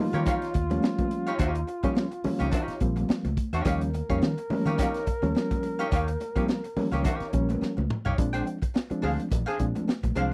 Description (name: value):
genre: funk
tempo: 106 BPM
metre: 4/4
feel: swing 56% on 16ths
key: unclear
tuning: A4 = 440 Hz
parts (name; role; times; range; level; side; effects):
- warm trombone; second line; 0.0-9.7 s; F4 to Bb4; -36 LUFS; equal; none
- reed electric piano; stabs; 0.0-10.3 s; F3 to Eb4; -32 LUFS; equal; fast tremolo
- archtop guitar, miked and amplified; accompaniment; 0.1-10.3 s; D4 to G5; -35 LUFS; equal; wah
- vintage muted fingered electric bass; bass; 0.1-10.3 s; Bb1 to Eb3; -32 LUFS; equal; tube saturation
- crunchy breakbeat drum kit; drums; 0.1-10.3 s; hi-hat, kick drum, snare drum, toms; -30 LUFS; equal; none
- congas; percussion; 0.1-10.3 s; none; -38 LUFS; equal; none
room: little or no reverb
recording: dry, close 1970s-style studio recording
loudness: -27 LUFS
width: mono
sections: 0.0-8.2 A section; 8.2-10.3 B section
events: drum fill 7.6-8.2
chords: 0.0 Eb9; 8.2 Bb9